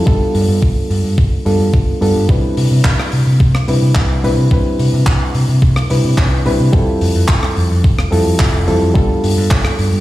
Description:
nu-disco, nu disco; 108 BPM; 4/4; straight; C major; A4 = 440 Hz
reed electric piano; accompaniment; 0.0-10.0 s; G3 to B4; -18 LUFS; equal; sidechain pumping, low-pass filter, analog delay
picked electric bass; bass; 0.0-10.0 s; F1 to C3; -14 LUFS; equal
electronic kick drum; drums; 0.1-9.6 s; -13 LUFS; equal; overdrive
tight funk drum kit; drums; 0.3-9.9 s; handclaps, hi-hat, rim click; -23 LUFS; equal
light reverb; played on a big sound system in a bare room, stone room reverb; -11 LUFS; side -16 dB against mid
0.0-10.0 A section
0.1 G9; 2.3 Cmaj7; 6.7 Fmaj9; 9.0 G9

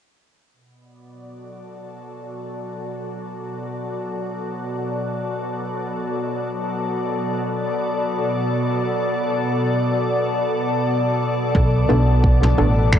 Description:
ambient dub; free time; B minor; A4 = 439 Hz
soft additive organ-like pad; sustained chords; 1.2-13.0 s; B2 to D5; -22 LUFS; left 1 dB; ensemble chorus, built-in reverb, cassette tape
electronic kick drum; drums; 11.5-13.0 s; -17 LUFS; equal
upright bass; bass; 11.6-13.0 s; A1 to B1; -16 LUFS; equal
filtered dub chord stab; stabs; 11.9-12.8 s; B3 to A4; -22 LUFS; equal; phaser, analog chorus, cassette tape, dub echo
vintage brush drum kit; drums; 12.4-13.0 s; finger snaps, toms; -23 LUFS; left 1 dB; dub echo
light reverb, small room ambience; home recording on cassette, nothing above 10.5 kHz; -19 LUFS; side -9 dB against mid
0.5-11.5 A section; 11.5-13.0 B section
fade-in on ambient pad 0.5-11.5
0.5 Bm7

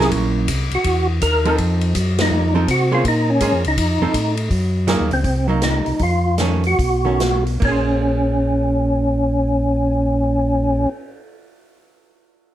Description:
soul jazz organ trio; 139-164 BPM; 4/4; swing 63% on 8ths; Bb minor; A4 = 440 Hz
percussive tonewheel organ; melody; 0.0-10.9 s; C4 to Bb4; -19 LUFS; equal; slow rotary speaker, chorus vibrato
archtop guitar, miked and amplified; accompaniment; 0.0-11.0 s; Eb3 to C5; -22 LUFS; right 4 dB
tonewheel organ; bass; 0.0-10.9 s; Bb1 to C3; -20 LUFS; equal; slow rotary speaker
swinging big-band drum kit; drums; 0.0-11.0 s; crash cymbal, cymbal swell, hi-hat, kick drum, ride cymbal, snare drum; -24 LUFS; left 1 dB
light reverb; dark, warm production; -16 LUFS; side -12 dB against mid
0.0-4.5 A section; 4.5-7.6 B section; 7.6-11.1 C section
band accent 2.1; slowing down 4.5-7.6
0.0 Gb7; 1.6 F7; 3.0 Bbm9; 3.8 F7; 4.5 Gb69; 5.2 Cm7b5; 6.0 F7b13; 6.8 B9; 7.6 Bbm9

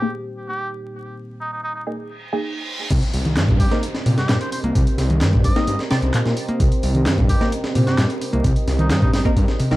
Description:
breakbeat, breaks; 130 BPM; 4/4; straight; C minor; A4 = 439 Hz
trumpet with cup mute; melody; 0.0-9.2 s; Eb4 to Eb5; -30 LUFS; equal; small speaker sound, digital delay
dark analog pad; sustained chords; 0.0-9.8 s; Bb2 to Eb5; -28 LUFS; right 1 dB; chorus, sidechain pumping
filtered dub chord stab; stabs; 0.0-9.8 s; Bb3 to D5; -27 LUFS; equal; phaser, analog chorus, digital delay
reverse cymbal and downlifter; sound effects; 2.2-6.6 s; -34 LUFS; right 1 dB
overdriven picked electric bass; riff; 2.9-9.8 s; Bb2 to Bb3; -22 LUFS; equal; tube saturation, vintage 12-bit sampler grit
detuned saw bass; bass; 2.9-9.8 s; C2 to Bb2; -20 LUFS; equal
breakbeat sampler-style drum kit; drums; 2.9-9.8 s; crash cymbal, hi-hat, kick drum, snare drum; -20 LUFS; equal
punchy analog drum machine; drums; 2.9-9.8 s; handclaps, hi-hat; -32 LUFS; equal
light reverb; dark, warm production, vinyl crackle; -17 LUFS; side -17 dB against mid
0.0-2.9 A section; 2.9-9.8 B section
filter sweep on synth stab 0.0-2.9; filter sweep on analog synth pad 0.0-2.9; reverse cymbal 2.2-2.9; drop 2.9-9.8
0.0 Bb7sus4; 2.9 Cm7

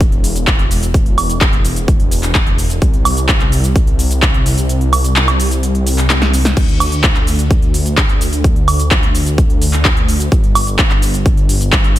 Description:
EDM, festival progressive house; 128 BPM; 4/4; straight; C major; A4 = 440 Hz
wide detuned saw bass; bass; 0.0-12.0 s; E1 to D2; -16 LUFS; equal; chorus, sidechain pumping
big-room dance drum kit; drums; 0.0-12.0 s; crash cymbal, handclaps, hi-hat, shaker, snare drum, woodblock; -16 LUFS; right 1 dB
electronic kick drum; drums; 0.0-11.8 s; -13 LUFS; equal
little or no reverb; -11 LUFS; side -14 dB against mid
0.0-12.0 A section
kick drops out 4.7-6.6; drum fill 6.1-6.6

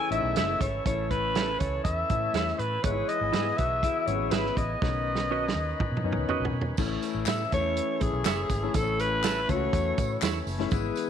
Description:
uptempo 1960s-style soul; 122 BPM; 4/4; straight; A4 = 439 Hz
raspy alto saxophone; melody; 0.0-10.2 s; G#4 to G#5; -29 LUFS; equal
mellow saxophone section; second line; 0.0-4.7 s; B2 to B4; -34 LUFS; left 12 dB
overdriven tonewheel organ; sustained chords; 0.0-11.1 s; D#3 to B4; -37 LUFS; left 1 dB; slow rotary speaker
warm grand piano; accompaniment; 0.1-11.1 s; F#3 to F#4; -34 LUFS; left 12 dB
vintage muted fingered electric bass; bass; 0.1-10.9 s; F#1 to B2; -32 LUFS; equal
warm soul drum kit; drums; 0.1-11.1 s; crash cymbal, hi-hat, kick drum, snare drum, toms; -31 LUFS; right 3 dB
semi-hollow electric guitar; stabs; 0.4-10.4 s; C#4 to E5; -34 LUFS; right 11 dB; analog chorus
tambourine and handclaps; percussion; 6.8-11.1 s; -40 LUFS; left 4 dB
moderate echo chamber reverb, RT60 1.9 s, small room ambience; 1960s-style stereo with parts hard left and right; -25 LUFS; side -8 dB against mid
0.0-6.8 A section; 6.8-11.1 B section
drum fill 4.8-6.8
0.0 A; 2.8 E/G#; 4.8 Badd9; 6.8 A

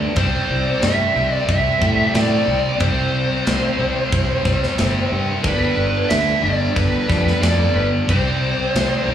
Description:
hard rock; 91 BPM; 4/4; straight; C major; A4 = 439 Hz
bright tonewheel organ; sustained chords; 0.0-9.1 s; G3 to E5; -32 LUFS; left 2 dB
distorted electric guitar; riff; 0.0-9.1 s; G2 to C4; -25 LUFS; right 6 dB; distortion, slapback echo
tight distorted guitar; riff; 0.0-9.1 s; G2 to C4; -25 LUFS; left 12 dB; distortion, slapback echo
fuzz fingered electric bass; bass; 0.0-9.1 s; G1 to A2; -21 LUFS; equal; overdrive
smooth overdriven lead guitar; melody; 0.2-9.1 s; B4 to E5; -21 LUFS; right 1 dB; plate reverb, slapback echo
tight metal drum kit; drums; 0.2-8.9 s; crash cymbal, kick drum, snare drum; -24 LUFS; equal
light reverb; live gig heard through the venue's PA, club reverb, small room ambience; -16 LUFS; side -10 dB against mid
0.0-9.1 A section
0.2 C; 5.4 G; 8.1 C5

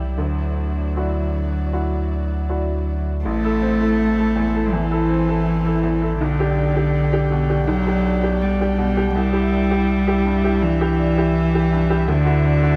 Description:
neoclassical piano and strings; 81 BPM; 4/4; rubato; A dorian; A4 = 440 Hz
warm cello; second line; 0.0-12.8 s; D3 to A3; -22 LUFS; equal
bright upright piano; accompaniment; 0.0-12.8 s; A1 to A4; -26 LUFS; equal
dark chamber string section; sustained chords; 0.0-12.8 s; D4 to G5; -36 LUFS; equal
pure sine sub bass; bass; 0.0-12.8 s; A1 to D2; -26 LUFS; equal
little or no reverb; close, detailed microphones; -19 LUFS; mono
0.0-3.3 A section; 3.3-12.8 B section
0.2 Dadd9; 3.3 Am; 6.2 G/B; 9.1 Cadd9; 12.1 Dadd9

